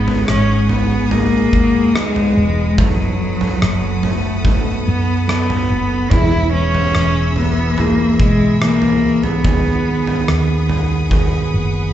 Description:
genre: pop ballad.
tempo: 72 BPM.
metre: 4/4.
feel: straight.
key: unclear.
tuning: A4 = 440 Hz.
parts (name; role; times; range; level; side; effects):
warm cello; melody; 0.0-10.9 s; F#3 to E4; -18 LUFS; left 1 dB; slapback echo.
bell-like tine electric piano; accompaniment; 0.0-11.9 s; D#3 to D#4; -22 LUFS; left 1 dB; medium stereo tremolo.
bright studio string section; sustained chords; 0.0-11.9 s; G#4 to E6; -28 LUFS; left 1 dB; none.
fingerpicked plugged-in steel-string acoustic guitar; arpeggios; 0.0-11.9 s; D#3 to A4; -27 LUFS; right 3 dB; slapback echo.
woody fretless electric bass; bass; 0.0-11.9 s; E1 to F#2; -20 LUFS; equal; none.
huge arena drum kit; drums; 0.1-11.3 s; kick drum, rim click, toms; -20 LUFS; right 1 dB; none.
room: small room reverb.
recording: live gig heard through the venue's PA, club reverb, nothing above 8.0 kHz.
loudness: -13 LUFS.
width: side -11 dB against mid.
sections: 0.0-11.9 A section.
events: none.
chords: 0.0 G#m7; 2.8 B7/F#; 6.1 E; 9.4 B6/D#.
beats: 0.28 1.11 1.95 | 2.78 3.61 4.45 5.28 | 6.11 6.95 7.78 8.61 | 9.45 10.28 11.11.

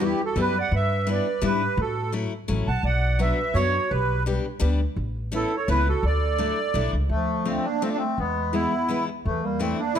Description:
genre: musette waltz.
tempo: 169 BPM.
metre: 3/4.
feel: straight.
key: D major.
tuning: A4 = 441 Hz.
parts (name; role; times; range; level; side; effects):
accordion; melody; 0.0-10.0 s; A3 to A5; -26 LUFS; right 1 dB; light tremolo tuning.
warm clarinet; second line; 0.0-10.0 s; E3 to F#5; -30 LUFS; right 5 dB; none.
picked steel-string acoustic guitar; accompaniment; 0.0-10.0 s; E3 to G4; -29 LUFS; left 6 dB; none.
upright bass; bass; 0.0-9.7 s; A1 to A2; -25 LUFS; equal; none.
room: light reverb.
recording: close, detailed microphones.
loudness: -22 LUFS.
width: side -9 dB against mid.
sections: 0.0-7.1 A section; 7.1-10.0 B section.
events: none.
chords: 0.0 Em; 0.7 G6; 1.8 A6; 2.8 Bm; 3.9 G/B; 5.0 Aadd9; 6.0 Dadd9; 7.1 Dm; 8.2 E; 9.3 Asus4/E.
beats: 0.01 0.37 | 0.72 1.07 1.42 | 1.78 2.13 2.49 | 2.84 3.20 3.55 | 3.91 4.26 4.61 | 4.97 5.32 5.68 | 6.03 6.39 6.75 | 7.11 7.47 7.83 | 8.19 8.54 8.90 | 9.25 9.61 9.96.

